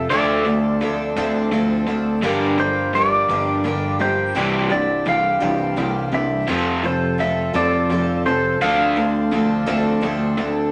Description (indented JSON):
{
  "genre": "folk rock and heartland rock",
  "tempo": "56 BPM (dotted quarters)",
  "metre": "6/8",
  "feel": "straight",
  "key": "unclear",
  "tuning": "A4 = 440 Hz",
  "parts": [
    { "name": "clean lap steel guitar", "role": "melody", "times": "0.0-10.0 s", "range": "C5 to F5", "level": "-24 LUFS", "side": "equal", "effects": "none" },
    { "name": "picked twelve-string acoustic guitar", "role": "accompaniment", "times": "0.0-10.7 s", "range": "G2 to A4", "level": "-26 LUFS", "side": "equal", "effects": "none" },
    { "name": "pedal harmonium", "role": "sustained chords", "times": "0.0-10.7 s", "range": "E3 to C5", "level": "-34 LUFS", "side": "equal", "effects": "none" },
    { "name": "raw garage guitar", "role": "riff", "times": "0.0-10.7 s", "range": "F2 to D4", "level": "-24 LUFS", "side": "equal", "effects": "overdrive" },
    { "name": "fingered electric bass", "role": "bass", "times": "0.0-10.7 s", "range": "G1 to F2", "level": "-31 LUFS", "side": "equal", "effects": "none" }
  ],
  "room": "wet studio reverb, RT60 0.7 s",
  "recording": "none",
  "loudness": "-20 LUFS",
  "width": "mono",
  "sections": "0.0-10.7 A section",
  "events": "none",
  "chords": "0.1 Dm7; 2.2 Gm7; 4.4 Cadd9; 6.5 F; 8.6 Dm7"
}